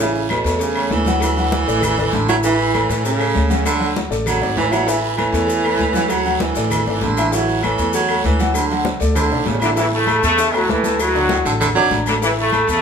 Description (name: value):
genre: latin, salsa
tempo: 196 BPM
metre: 4/4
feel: straight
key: A major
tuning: A4 = 441 Hz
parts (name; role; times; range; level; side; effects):
- warm baritone saxophone; second line; 0.0-12.0 s; A2 to F#3; -20 LUFS; right 4 dB; none
- warm grand piano; accompaniment; 0.0-12.8 s; D3 to D6; -22 LUFS; left 1 dB; none
- upright bass; bass; 0.0-12.8 s; G#1 to A2; -23 LUFS; equal; none
- congas; percussion; 0.0-12.8 s; none; -27 LUFS; left 3 dB; none
- guiro; percussion; 0.0-12.8 s; none; -33 LUFS; right 5 dB; none
- maracas; percussion; 0.0-12.8 s; none; -32 LUFS; left 5 dB; none
- agogo bells and timbales; percussion; 0.3-12.8 s; none; -26 LUFS; equal; none
- claves; percussion; 0.3-12.7 s; none; -32 LUFS; left 2 dB; none
- cowbell; percussion; 0.3-12.8 s; none; -30 LUFS; left 4 dB; none
- bright trombone section; melody; 9.6-12.8 s; F#2 to A3; -17 LUFS; left 1 dB; none
room: wet large studio reverb, RT60 0.9 s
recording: band playing live in one room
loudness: -15 LUFS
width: side -7 dB against mid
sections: 0.0-9.8 A section; 9.8-12.8 B section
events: drum fill 4.4-4.9, 9.2-9.8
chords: 0.0 A; 1.2 D; 2.4 A; 3.7 D; 4.9 A; 6.1 D; 7.3 A; 8.6 D; 9.8 A; 11.0 D; 12.2 A